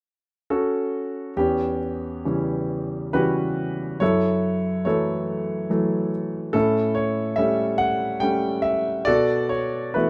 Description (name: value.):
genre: classical, lyrical solo piano.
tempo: 70 BPM.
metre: 3/4.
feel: uneven beats, rubato.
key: E dorian.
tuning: A4 = 440 Hz.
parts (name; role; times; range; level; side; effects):
warm concert grand piano; solo; 0.5-10.1 s; E2 to G5; -23 LUFS; equal; none.
room: light reverb.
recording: none.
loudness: -23 LUFS.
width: mono.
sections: 0.0-1.4 A section; 1.4-10.1 B section.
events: none.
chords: 0.0 F#m/C#; 1.4 Em69; 4.0 F#m7; 6.5 A7; 9.1 B7sus4.